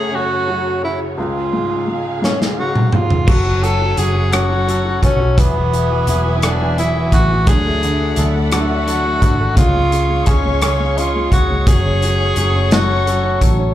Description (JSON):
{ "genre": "six-eight pop ballad", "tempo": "57 BPM (dotted quarters)", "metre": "6/8", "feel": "straight", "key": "F# minor", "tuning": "A4 = 440 Hz", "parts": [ { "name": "breathy tenor saxophone", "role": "melody", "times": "0.0-13.5 s", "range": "B3 to A4", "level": "-19 LUFS", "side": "equal", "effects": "slapback echo" }, { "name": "clear upright piano", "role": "accompaniment", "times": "0.0-13.7 s", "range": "C#2 to C#4", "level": "-22 LUFS", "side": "equal", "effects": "slapback echo" }, { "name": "warm studio string section", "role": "sustained chords", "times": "0.0-13.7 s", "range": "C#2 to C#6", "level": "-26 LUFS", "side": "equal", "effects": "none" }, { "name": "modern studio drum kit", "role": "drums", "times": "2.2-13.6 s", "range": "crash cymbal, hi-hat, kick drum, rim click, snare drum, toms", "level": "-17 LUFS", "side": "equal", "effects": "none" }, { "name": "clean electric guitar", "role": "arpeggios", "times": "3.3-13.7 s", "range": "C#3 to A4", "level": "-26 LUFS", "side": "left 5 dB", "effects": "slapback echo" }, { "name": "vintage muted fingered electric bass", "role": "bass", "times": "3.3-13.7 s", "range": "E1 to D2", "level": "-18 LUFS", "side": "equal", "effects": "none" } ], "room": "light reverb", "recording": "live gig heard through the venue's PA, club reverb", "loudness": "-13 LUFS", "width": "side -12 dB against mid", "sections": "0.0-3.3 A section; 3.3-13.7 B section", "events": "drum fill 2.2-3.3", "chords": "0.0 F#m; 1.2 C#; 3.3 F#m; 5.4 Eadd9; 7.5 Dadd9; 9.6 C#; 11.7 F#m" }